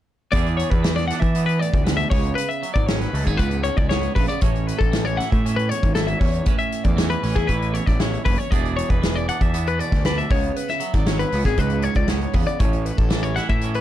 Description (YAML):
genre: math rock and midwest emo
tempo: 117 BPM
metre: 4/4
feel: straight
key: A major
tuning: A4 = 440 Hz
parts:
  - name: twangy electric guitar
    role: accompaniment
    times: 0.3-13.8 s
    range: E2 to G#4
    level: -28 LUFS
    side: right 13 dB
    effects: none
  - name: twelve-string electric guitar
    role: arpeggios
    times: 0.3-13.8 s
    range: G#4 to F#5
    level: -26 LUFS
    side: left 6 dB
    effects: none
  - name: fuzz picked electric bass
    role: bass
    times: 0.3-13.8 s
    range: E1 to E3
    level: -23 LUFS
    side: equal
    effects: overdrive
  - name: loose indie drum kit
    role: drums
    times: 0.3-13.8 s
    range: hi-hat, kick drum, snare drum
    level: -22 LUFS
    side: equal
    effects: none
room: little or no reverb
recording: dark, warm production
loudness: -18 LUFS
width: side -12 dB against mid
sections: 0.3-13.8 A section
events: none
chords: 0.3 E7; 2.1 C#7sus4; 4.4 A; 8.5 E7; 10.3 C#7sus4; 12.6 A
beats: | 0.34 0.84 1.36 1.87 | 2.38 2.89 3.40 3.91 | 4.42 4.93 5.44 5.95 | 6.46 6.97 7.49 8.00 | 8.51 9.02 9.53 10.04 | 10.56 11.07 11.58 12.09 | 12.61 13.12 13.63